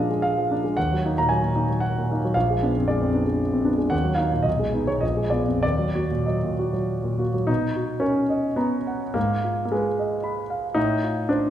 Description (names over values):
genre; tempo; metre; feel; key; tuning
classical, romantic character piece for solo piano; 94-115 BPM; 3/4; rubato; Eb minor; A4 = 442 Hz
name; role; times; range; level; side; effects
warm concert grand piano; solo; 0.0-11.5 s; Bb1 to Cb6; -21 LUFS; equal; none
room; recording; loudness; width
wet recital hall reverb, RT60 1.4 s; heard from further back in the room; -21 LUFS; side -11 dB against mid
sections
0.0-7.5 A section; 7.5-11.5 B section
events
none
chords
0.0 Bb7; 0.8 Ebm; 2.3 Bb7b9; 3.9 Ebm; 4.5 Abm/Cb; 5.0 Bb7b9; 5.6 Ebm; 7.5 Bmaj7; 9.2 Fm7b5/Ab; 10.8 F7/A